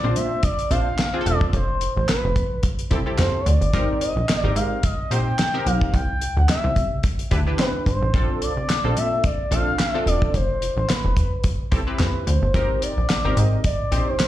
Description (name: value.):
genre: early-eighties boogie funk.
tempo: 109 BPM.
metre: 4/4.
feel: swing 56% on 16ths.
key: unclear.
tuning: A4 = 444 Hz.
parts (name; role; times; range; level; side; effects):
expressive portamento lead; melody; 0.0-14.3 s; Cb5 to G5; -26 LUFS; equal; chorus, plate reverb, slapback echo, tape echo.
funky polysynth comp; accompaniment; 0.0-14.2 s; C4 to C5; -28 LUFS; equal; chorus, plate reverb, slapback echo.
plucky analog bass; bass; 0.0-14.1 s; E1 to C3; -22 LUFS; equal; none.
damped 70s drum kit; drums; 0.2-14.3 s; handclaps, hi-hat, kick drum, snare drum; -23 LUFS; equal; none.
room: light reverb.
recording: live gig heard through the venue's PA, club reverb.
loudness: -19 LUFS.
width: side -13 dB against mid.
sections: 0.0-14.3 A section.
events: none.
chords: 0.0 Bbmaj9; 1.5 Fmaj9; 3.7 Abmaj9; 5.9 Cmaj9; 8.1 Bbmaj9; 10.3 Fmaj7sus2; 12.5 Abmaj9.